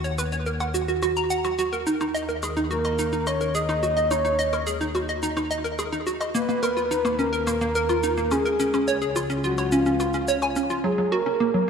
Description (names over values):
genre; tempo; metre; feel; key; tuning
ambient, sequencer-driven space music; 107 BPM; 4/4; straight; Eb minor; A4 = 439 Hz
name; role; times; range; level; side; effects
hollow square pluck; riff; 0.0-11.6 s; F#3 to Bb5; -24 LUFS; right 1 dB; lush chorus, analog delay
analog drone; bass; 0.0-11.7 s; Db2 to F#2; -31 LUFS; left 1 dB; chorus
shaker and percussion blips; percussion; 0.0-10.8 s; none; -36 LUFS; left 2 dB; overdrive, analog delay
breathy flute-like synth lead; melody; 2.7-11.7 s; F4 to Eb5; -25 LUFS; equal; chorus, vintage 12-bit sampler grit, analog delay
room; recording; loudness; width
wet lush hall reverb, RT60 2.7 s; none; -22 LUFS; side -6 dB against mid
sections
0.0-10.8 A section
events
none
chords
0.0 Gb5/Eb; 1.9 Ebm; 6.4 Bbm/Eb; 8.6 Db; 10.8 F#